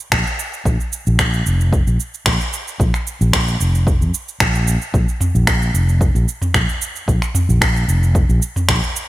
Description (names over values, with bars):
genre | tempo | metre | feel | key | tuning
organic downtempo | 112 BPM | 4/4 | swing 53% on 16ths | unclear | A4 = 440 Hz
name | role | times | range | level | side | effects
deep house drum kit | drums | 0.0-9.1 s | finger snaps, shaker, toms | -20 LUFS | right 1 dB | none
fretless electric bass | bass | 0.1-8.8 s | F1 to F2 | -16 LUFS | equal | sidechain pumping
electronic kick drum | drums | 0.1-8.8 s | none | -20 LUFS | equal | none
room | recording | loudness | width
light reverb | bright 1980s-style digital production | -15 LUFS | side -16 dB against mid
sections
0.0-9.1 A section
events
none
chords
none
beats
0.12 | 0.65 1.19 1.73 2.26 | 2.80 3.33 3.87 4.40 | 4.94 5.47 6.01 6.55 | 7.08 7.62 8.15 8.69